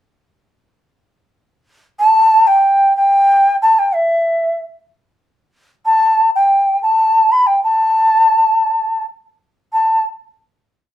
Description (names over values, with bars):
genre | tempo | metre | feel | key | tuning
andean folk | 93 BPM | 3/4 | straight | unclear | A4 = 444 Hz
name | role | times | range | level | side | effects
bright large quena | solo | 2.0-10.0 s | E5 to B5 | -11 LUFS | equal | none
room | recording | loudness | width
wet studio reverb, RT60 0.5 s | heard from further back in the room | -11 LUFS | side -12 dB against mid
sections
2.0-9.7 A section; 9.7-10.9 final note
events
none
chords
none